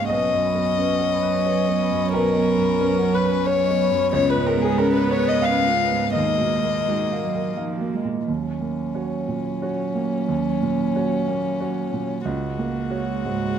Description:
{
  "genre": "neoclassical piano and strings",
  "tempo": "90 BPM",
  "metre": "3/4",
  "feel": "rubato",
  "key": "Eb minor",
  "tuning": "A4 = 439 Hz",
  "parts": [
    { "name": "dark violin", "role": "melody", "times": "0.0-13.6 s", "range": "Db4 to F5", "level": "-23 LUFS", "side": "left 6 dB", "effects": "none" },
    { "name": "warm grand piano", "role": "accompaniment", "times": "0.0-13.6 s", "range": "B1 to Gb5", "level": "-25 LUFS", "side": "right 4 dB", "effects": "none" },
    { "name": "warm viola", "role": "accompaniment", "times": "0.0-8.0 s", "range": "Bb3 to C#4", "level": "-29 LUFS", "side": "right 4 dB", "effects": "none" },
    { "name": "vibraphone with soft mallets", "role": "arpeggios", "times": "0.0-8.2 s", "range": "Db4 to B5", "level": "-29 LUFS", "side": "left 6 dB", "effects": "tape echo" },
    { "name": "warm cello", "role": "second line", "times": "0.1-13.6 s", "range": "F3 to Ab3", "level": "-27 LUFS", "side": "right 7 dB", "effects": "none" }
  ],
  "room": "light reverb",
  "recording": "close, detailed microphones",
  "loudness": "-19 LUFS",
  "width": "side -8 dB against mid",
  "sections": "0.0-8.3 A section; 8.3-13.6 B section",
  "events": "none",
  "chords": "0.1 Badd9; 4.1 Db7; 6.2 Ebmadd9; 8.3 Ebm7; 12.3 Gbadd9/Db"
}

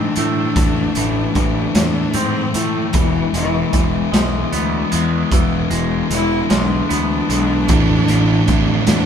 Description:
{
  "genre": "quiet-loud alternative rock",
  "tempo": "50 BPM (dotted quarters)",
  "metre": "6/8",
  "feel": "straight",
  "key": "A harmonic minor",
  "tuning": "A4 = 440 Hz",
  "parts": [
    { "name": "clear cello", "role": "melody", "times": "0.0-9.1 s", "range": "E3 to E4", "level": "-22 LUFS", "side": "equal", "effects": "none" },
    { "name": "twangy electric guitar", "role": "arpeggios", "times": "0.0-7.7 s", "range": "A2 to C4", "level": "-25 LUFS", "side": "right 4 dB", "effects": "phaser" },
    { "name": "thick fuzz guitar", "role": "riff", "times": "0.0-9.1 s", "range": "A2 to E4", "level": "-20 LUFS", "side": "left 6 dB", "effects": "distortion" },
    { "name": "fuzz picked electric bass", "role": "bass", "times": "0.0-9.1 s", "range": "E1 to A2", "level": "-21 LUFS", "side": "equal", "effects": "overdrive" },
    { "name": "raw garage drum kit", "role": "drums", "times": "0.2-9.1 s", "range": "hi-hat, kick drum, snare drum", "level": "-19 LUFS", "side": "right 1 dB", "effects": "none" },
    { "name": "thick fuzz guitar", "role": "riff", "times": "7.7-9.1 s", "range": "A2 to E4", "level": "-17 LUFS", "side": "right 4 dB", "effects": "distortion" }
  ],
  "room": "light reverb",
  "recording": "band playing live in one room",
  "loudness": "-14 LUFS",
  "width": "side -8 dB against mid",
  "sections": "0.0-9.1 A section",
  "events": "cello solo 0.0-9.1",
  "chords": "0.0 Am; 2.9 E; 7.7 Am"
}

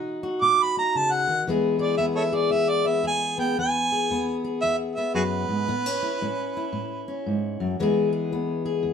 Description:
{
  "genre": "acoustic country blues, solo or duo",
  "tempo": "114 BPM",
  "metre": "4/4",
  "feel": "swing 64% on 8ths",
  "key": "E major",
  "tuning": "A4 = 439 Hz",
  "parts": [
    { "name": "fingerpicked steel-string acoustic guitar", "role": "accompaniment", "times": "0.0-8.9 s", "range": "E2 to G#4", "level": "-25 LUFS", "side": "left 3 dB", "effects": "none" },
    { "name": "mellow harmonica", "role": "melody", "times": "0.4-7.2 s", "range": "F#4 to D6", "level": "-24 LUFS", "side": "right 3 dB", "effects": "none" }
  ],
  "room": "moderate studio reverb, RT60 0.7 s",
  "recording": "band playing live in one room",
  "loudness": "-22 LUFS",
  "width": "side -7 dB against mid",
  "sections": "0.0-1.5 A section; 1.5-8.9 B section",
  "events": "harmonica solo 0.0-1.5",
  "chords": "0.0 B; 1.5 E; 5.7 A; 7.8 E"
}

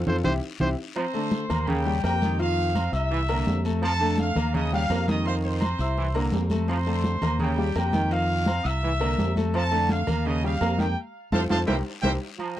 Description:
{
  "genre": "latin, salsa",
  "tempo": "168 BPM",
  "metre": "4/4",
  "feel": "straight",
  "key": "F major",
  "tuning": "A4 = 440 Hz",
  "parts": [
    { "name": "fingered electric bass", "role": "bass", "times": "0.0-12.2 s", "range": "C2 to F2", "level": "-26 LUFS", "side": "equal", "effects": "none" },
    { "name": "bright trumpet", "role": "melody", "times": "0.1-0.7 s", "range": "C5", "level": "-28 LUFS", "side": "right 1 dB", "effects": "none" },
    { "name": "clear concert grand piano", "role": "accompaniment", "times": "0.1-12.2 s", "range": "F3 to E6", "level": "-29 LUFS", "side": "left 3 dB", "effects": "none" },
    { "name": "congas", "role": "percussion", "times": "0.1-12.6 s", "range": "none", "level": "-30 LUFS", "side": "left 1 dB", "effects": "none" },
    { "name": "guiro", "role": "percussion", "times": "0.1-12.6 s", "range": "none", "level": "-45 LUFS", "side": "left 9 dB", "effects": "none" },
    { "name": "timbales and agogo bells", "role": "percussion", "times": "0.1-12.6 s", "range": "none", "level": "-35 LUFS", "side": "right 5 dB", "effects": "none" },
    { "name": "clear trumpet section", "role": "melody", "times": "1.0-12.1 s", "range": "G4 to E6", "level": "-29 LUFS", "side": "equal", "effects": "tape echo" },
    { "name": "bright trombone section", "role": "second line", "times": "1.0-12.6 s", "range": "A2 to F3", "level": "-32 LUFS", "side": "right 4 dB", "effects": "none" }
  ],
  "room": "little or no reverb",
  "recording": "dry, close 1970s-style studio recording",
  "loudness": "-22 LUFS",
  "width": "side -12 dB against mid",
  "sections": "1.0-12.4 A section",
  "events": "drum fill 0.0-1.0, 11.5-12.4; band accent 0.0-1.0, 11.0-12.4",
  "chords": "0.3 C; 1.0 F (rootless); 1.7 Eb7; 2.4 F5; 3.1 C7; 3.8 F; 4.5 Eb7; 5.3 F5; 6.0 C7; 6.7 F; 7.4 Eb7; 8.1 F5; 8.8 C7; 9.5 F; 10.3 Eb7; 11.0 F; 11.7 C7"
}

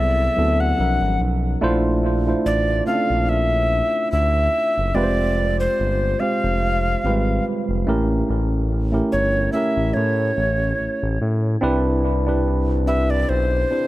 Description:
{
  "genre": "R&B, neo-soul",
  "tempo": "72 BPM",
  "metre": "4/4",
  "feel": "swing 55% on 16ths",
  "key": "C major",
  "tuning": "A4 = 440 Hz",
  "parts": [
    { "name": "mellow tenor recorder", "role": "melody", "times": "0.0-13.9 s", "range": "C5 to F#5", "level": "-22 LUFS", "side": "equal", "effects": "analog delay" },
    { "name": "tine electric piano", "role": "accompaniment", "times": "0.0-13.9 s", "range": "E#3 to C5", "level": "-22 LUFS", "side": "right 2 dB", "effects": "analog delay" },
    { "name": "smooth synth bass", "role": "bass", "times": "0.0-13.6 s", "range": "F1 to A2", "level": "-21 LUFS", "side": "equal", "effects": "none" }
  ],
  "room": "moderate spring reverb, RT60 2.4 s",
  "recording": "echo-heavy mix",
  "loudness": "-18 LUFS",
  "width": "side -16 dB against mid",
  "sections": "0.0-11.6 A section; 11.6-13.9 B section",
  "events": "recorder solo 11.6-13.9",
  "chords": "0.0 D13; 0.8 Bmaj9#11; 1.6 Bbmaj9#11; 4.9 Fmadd9; 7.9 A7b9; 11.6 Cmaj9"
}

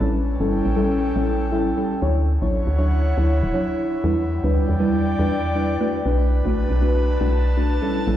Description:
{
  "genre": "deep house",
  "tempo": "119 BPM",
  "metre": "4/4",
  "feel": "swing 57% on 16ths",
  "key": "unclear",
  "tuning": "A4 = 440 Hz",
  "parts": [
    { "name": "deep mellow chord stab", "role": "stabs", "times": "0.0-8.2 s", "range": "F#3 to C#5", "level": "-23 LUFS", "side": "equal", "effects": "chorus, phaser, dub echo" },
    { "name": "woody FM bass", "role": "bass", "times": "0.0-8.2 s", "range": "D1 to E2", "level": "-21 LUFS", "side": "equal", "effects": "none" },
    { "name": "airy breathy pad", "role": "texture", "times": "0.0-8.2 s", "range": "C#4 to A5", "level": "-26 LUFS", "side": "equal", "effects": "chorus" }
  ],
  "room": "light reverb, digital ambience",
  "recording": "played on a big sound system in a bare room, stone room reverb",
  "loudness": "-18 LUFS",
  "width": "side -12 dB against mid",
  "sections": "0.0-8.2 A section",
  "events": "none",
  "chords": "0.0 A7; 2.0 Dmaj9; 4.0 Em7; 5.8 Bm7"
}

